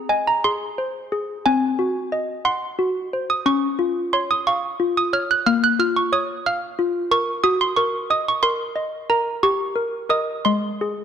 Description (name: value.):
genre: classical, lullaby for handbells.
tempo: 60 BPM (dotted quarters).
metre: 6/8.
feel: rubato.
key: unclear.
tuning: A4 = 439 Hz.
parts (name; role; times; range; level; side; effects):
malleted handbells; solo; 0.0-11.0 s; Ab3 to Gb6; -19 LUFS; equal; none.
room: moderate concert hall reverb, RT60 2.1 s.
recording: dark, warm production.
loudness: -19 LUFS.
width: side -8 dB against mid.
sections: 0.0-11.0 A section.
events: none.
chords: 0.0 Ab/C; 1.5 Ab7/C; 3.5 Db; 5.5 Bbm; 7.5 Ebm/Gb; 9.4 Eb7/G; 10.5 Ab.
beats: 0.44 | 1.46 2.46 | 3.46 4.47 | 5.47 6.46 | 7.45 8.44 | 9.43 10.45.